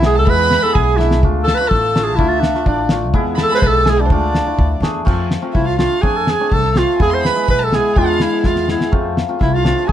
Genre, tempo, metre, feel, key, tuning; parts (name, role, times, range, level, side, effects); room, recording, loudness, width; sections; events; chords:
klezmer; 125 BPM; 2/4; straight; A4 = 443 Hz
clear clarinet; melody; 0.0-9.9 s; D4 to C5; -17 LUFS; right 1 dB; plate reverb
dark violin; second line; 0.0-9.9 s; C5 to C6; -23 LUFS; right 4 dB
hammered dulcimer; accompaniment; 0.0-9.9 s; G#3 to G#4; -21 LUFS; left 2 dB
upright bass; bass; 0.0-9.9 s; A1 to F2; -19 LUFS; equal
cloth-damped thuddy drum kit; drums; 0.0-9.9 s; crash cymbal, kick drum, snare drum; -18 LUFS; equal
light reverb; -13 LUFS; side -11 dB against mid
0.0-5.1 A section; 5.1-9.9 B section
drum fill 1.0, 8.4-8.9
0.0 E; 1.2 Dm; 3.1 E; 4.1 Dm; 5.1 F; 7.0 E; 8.9 F